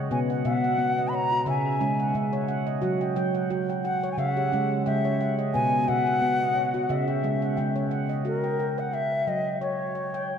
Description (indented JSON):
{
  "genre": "world meditative, meditative tuned percussion",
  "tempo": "88 BPM",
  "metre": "4/4",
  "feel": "swing 55% on 16ths",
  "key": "unclear",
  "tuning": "A4 = 440 Hz",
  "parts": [
    { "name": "handpan", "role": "arpeggios", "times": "0.0-10.4 s", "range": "B2 to G5", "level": "-26 LUFS", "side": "equal", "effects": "tape echo" },
    { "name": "bright bansuri", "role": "melody", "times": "0.1-10.4 s", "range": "A#4 to B5", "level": "-27 LUFS", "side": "left 1 dB", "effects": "tape echo" }
  ],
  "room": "wet plate reverb, RT60 2.8 s",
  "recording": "echo-heavy mix",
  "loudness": "-23 LUFS",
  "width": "side -7 dB against mid",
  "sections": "0.0-8.3 A section; 8.3-10.4 B section",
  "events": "none",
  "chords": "0.1 B; 1.5 C#m; 2.8 F#5; 4.2 C#m; 5.5 B; 6.9 C#m; 8.3 F#5",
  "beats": "| 0.11 0.79 1.47 2.15 | 2.83 3.51 4.18 4.86 | 5.54 6.22 6.90 7.58 | 8.26 8.93 9.61 10.29"
}